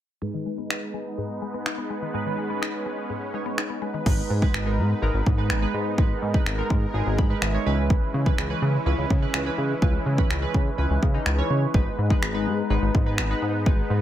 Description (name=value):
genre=dance-pop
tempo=125 BPM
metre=4/4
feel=straight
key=G# minor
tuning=A4 = 439 Hz
part: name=chorused retro synth keys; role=accompaniment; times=0.2-13.9 s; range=E3 to B5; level=-29 LUFS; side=right 1 dB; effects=sidechain pumping, low-pass filter
part: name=filtered supersaw swell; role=sustained chords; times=0.2-14.0 s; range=G#3 to B4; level=-32 LUFS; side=equal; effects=sidechain pumping, low-pass filter
part: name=mallet-like synth pluck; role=arpeggios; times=0.2-4.0 s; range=G#2 to D#4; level=-33 LUFS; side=left 6 dB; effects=chorus, sidechain pumping, low-pass filter, ping-pong delay
part: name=pop drum kit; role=drums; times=0.7-13.8 s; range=crash cymbal, finger snaps, kick drum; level=-23 LUFS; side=equal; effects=overdrive
part: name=chorused synth bass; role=bass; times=4.1-14.0 s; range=G#1 to C#3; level=-25 LUFS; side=equal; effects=sidechain pumping
room=digital ambience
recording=none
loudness=-22 LUFS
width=side -12 dB against mid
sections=0.2-4.1 A section; 4.1-14.0 B section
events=filter sweep 0.2-4.1; synth keys fill 6.9-7.9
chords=0.2 G#m; 7.7 C#m7; 11.7 G#m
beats=| 0.22 0.70 1.18 1.66 | 2.14 2.62 3.10 3.58 | 4.06 4.54 5.02 5.50 | 5.98 6.46 6.94 7.42 | 7.90 8.38 8.86 9.34 | 9.82 10.30 10.78 11.26 | 11.74 12.22 12.70 13.18 | 13.66